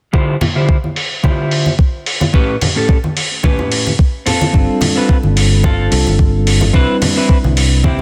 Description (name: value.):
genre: nu-disco, nu disco.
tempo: 109 BPM.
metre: 4/4.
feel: swing 54% on 16ths.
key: D dorian.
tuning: A4 = 440 Hz.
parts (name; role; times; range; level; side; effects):
clean electric guitar; riff; 0.1-8.0 s; A2 to C5; -21 LUFS; equal; lush chorus, low-pass filter.
electronic kick drum; drums; 0.1-8.0 s; none; -15 LUFS; equal; overdrive.
electronic hi-hat; drums; 0.4-7.7 s; none; -22 LUFS; equal; low-pass filter on hats.
congas; percussion; 0.4-8.0 s; none; -22 LUFS; equal; none.
bell-like tine electric piano; accompaniment; 4.5-8.0 s; G3 to B4; -20 LUFS; equal; sidechain pumping, tape echo.
fingered electric bass with an envelope filter; bass; 4.5-8.0 s; G1 to C2; -16 LUFS; equal; tube saturation.
room: light reverb.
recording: dense, heavily limited modern master.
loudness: -14 LUFS.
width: mono.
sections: 0.1-8.0 A section.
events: filter sweep on clean electric guitar 0.1-8.0.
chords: 0.1 Dm11; 2.3 A9; 4.3 G9sus4; 6.7 Cmaj7.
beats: | 0.14 0.69 1.24 1.79 | 2.34 2.89 3.44 3.99 | 4.54 5.09 5.64 6.19 | 6.74 7.29 7.84.